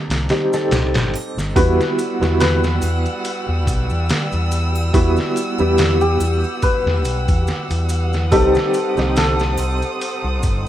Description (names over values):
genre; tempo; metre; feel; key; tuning
trip hop; 71 BPM; 4/4; swing 55% on 16ths; E harmonic minor; A4 = 440 Hz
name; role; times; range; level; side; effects
felt-muted upright piano; accompaniment; 0.0-10.7 s; G3 to A4; -21 LUFS; right 1 dB; tremolo
overdriven fingered electric bass; bass; 0.1-10.6 s; G1 to E2; -19 LUFS; equal; none
trip hop sampler-style drum kit; drums; 0.1-10.7 s; hi-hat, kick drum, snare drum; -21 LUFS; equal; vintage 12-bit sampler grit, studio reverb
maracas and triangle; percussion; 0.1-10.6 s; none; -37 LUFS; right 2 dB; none
santur; melody; 1.6-10.7 s; G4 to B4; -24 LUFS; left 1 dB; tape echo
warm studio violin section; sustained chords; 1.6-10.7 s; G3 to E6; -27 LUFS; equal; none
room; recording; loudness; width
studio ambience; rough home demo mix; -16 LUFS; side -12 dB against mid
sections
0.0-1.6 A section; 1.6-10.7 B section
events
none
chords
0.0 Cm; 1.6 Emadd9; 8.3 Cm